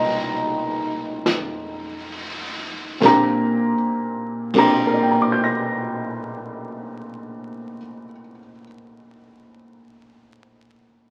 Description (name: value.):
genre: jazz ballad.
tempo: 33 BPM.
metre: 4/4.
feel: swing 66% on 8ths.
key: Bb major.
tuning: A4 = 441 Hz.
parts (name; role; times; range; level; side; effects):
clear upright piano; accompaniment; 0.0-11.1 s; Bb2 to Bb6; -22 LUFS; equal; none.
upright bass; bass; 0.0-7.7 s; Bb1 to F2; -38 LUFS; equal; none.
vintage brush drum kit; drums; 1.3-4.9 s; brushed snare drum, crash cymbal, hi-hat, kick drum, snare drum; -30 LUFS; equal; none.
room: wet studio reverb, RT60 0.8 s.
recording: very old 78 rpm record, vinyl crackle.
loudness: -21 LUFS.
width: mono.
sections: 0.0-3.0 A section; 3.0-10.4 B section.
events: slowing down 0.0-3.0.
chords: 0.0 F9sus4; 3.0 Bb69.